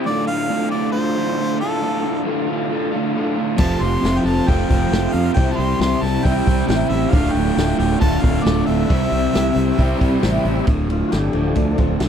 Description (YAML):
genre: classic rock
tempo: 136 BPM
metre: 4/4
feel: straight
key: D minor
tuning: A4 = 440 Hz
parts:
  - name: tonewheel organ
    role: sustained chords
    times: 0.0-12.1 s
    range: D3 to F5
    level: -30 LUFS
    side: equal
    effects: none
  - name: crunchy overdriven guitar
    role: riff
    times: 0.0-12.1 s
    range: D2 to C5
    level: -21 LUFS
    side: equal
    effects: none
  - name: clear harmonica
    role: melody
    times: 0.1-10.2 s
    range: A4 to C6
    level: -25 LUFS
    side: equal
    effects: slapback echo
  - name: dark smooth lead guitar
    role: second line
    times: 3.6-10.2 s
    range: A3 to G4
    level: -27 LUFS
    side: right 4 dB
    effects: overdrive
  - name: picked twelve-string acoustic guitar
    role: accompaniment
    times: 3.6-10.7 s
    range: F2 to F4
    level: -30 LUFS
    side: right 6 dB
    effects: none
  - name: distorted electric guitar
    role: riff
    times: 3.6-10.7 s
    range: D2 to C4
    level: -23 LUFS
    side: left 1 dB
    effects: distortion
  - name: modern bright fingered electric bass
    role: bass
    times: 3.6-12.1 s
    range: D1 to F2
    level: -22 LUFS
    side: equal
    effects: none
  - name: vintage drum kit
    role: drums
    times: 3.6-12.1 s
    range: crash cymbal, hi-hat, kick drum, ride cymbal, snare drum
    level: -19 LUFS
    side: equal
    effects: none
room: little or no reverb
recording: dry, close 1970s-style studio recording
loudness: -16 LUFS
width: side -8 dB against mid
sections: 0.0-10.7 A section; 10.7-12.1 B section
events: tonewheel organ solo 10.7-12.1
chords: 0.1 Dm; 3.6 F; 5.4 C; 7.1 Dm; 8.9 C; 10.7 Dm